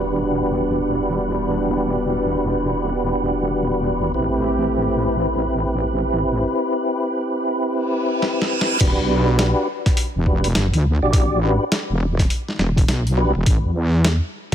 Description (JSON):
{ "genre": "glitch hop", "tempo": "103 BPM", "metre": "4/4", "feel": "swing 63% on 16ths", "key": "E minor", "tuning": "A4 = 439 Hz", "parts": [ { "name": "warm analog pad", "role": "sustained chords", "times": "0.0-6.4 s", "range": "E3 to G4", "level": "-25 LUFS", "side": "right 1 dB", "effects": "chorus, sidechain pumping" }, { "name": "mellow tonewheel organ", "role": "stabs", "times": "0.0-13.3 s", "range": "C4 to D5", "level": "-21 LUFS", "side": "equal", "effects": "chorus vibrato, slow rotary speaker, sidechain pumping, ping-pong delay" }, { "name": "wobble bass", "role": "bass", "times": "0.0-14.2 s", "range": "E1 to E2", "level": "-21 LUFS", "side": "equal", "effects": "chorus" }, { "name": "reverse cymbal", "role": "sound effects", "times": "8.1-8.8 s", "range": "none", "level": "-27 LUFS", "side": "right 5 dB", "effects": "none" }, { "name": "boom bap sampler-style drum kit", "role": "drums", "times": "8.2-14.5 s", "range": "crash cymbal, hi-hat, snare drum", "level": "-24 LUFS", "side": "equal", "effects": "small room ambience" }, { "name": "electronic kick drum", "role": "drums", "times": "8.8-14.5 s", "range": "none", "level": "-18 LUFS", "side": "equal", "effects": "small room ambience" } ], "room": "light reverb", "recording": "none", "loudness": "-17 LUFS", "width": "side -9 dB against mid", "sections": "0.0-8.8 A section; 8.8-14.5 B section", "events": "reverse cymbal 8.1-8.8; drum fill 8.2-8.8; drop 8.8-14.5", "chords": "0.0 Em7; 4.1 Am7; 8.8 Em7; 13.5 A5", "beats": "0.07 0.65 1.23 | 1.81 2.40 2.98 3.56 | 4.14 4.73 5.31 5.89 | 6.47 7.06 7.64 8.22 | 8.80 9.39 9.97 10.55 | 11.13 11.72 12.30 12.88 | 13.46 14.05" }